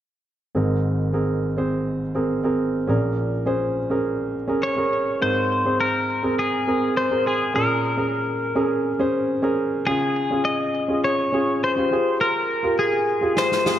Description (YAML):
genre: piano-driven pop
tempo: 103 BPM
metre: 4/4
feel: straight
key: Ab major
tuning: A4 = 436 Hz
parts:
  - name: warm baby grand piano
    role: accompaniment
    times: 0.5-13.8 s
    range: Ab1 to C5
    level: -22 LUFS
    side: right 1 dB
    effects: none
  - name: twelve-string electric guitar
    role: melody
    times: 4.6-13.8 s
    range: Ab4 to Eb5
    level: -22 LUFS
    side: left 2 dB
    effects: spring reverb
  - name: snare drum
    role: drums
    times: 13.4-13.8 s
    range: none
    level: -24 LUFS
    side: equal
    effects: none
room: moderate large studio reverb, RT60 1.2 s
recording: dark, warm production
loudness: -20 LUFS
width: side -11 dB against mid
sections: 0.6-5.2 A section; 5.2-13.8 B section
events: drum fill 13.4-13.8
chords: 0.6 Abadd9; 2.9 Bbm7; 5.2 Abadd9; 7.5 Bbm7; 9.9 Db; 11.9 Fmadd9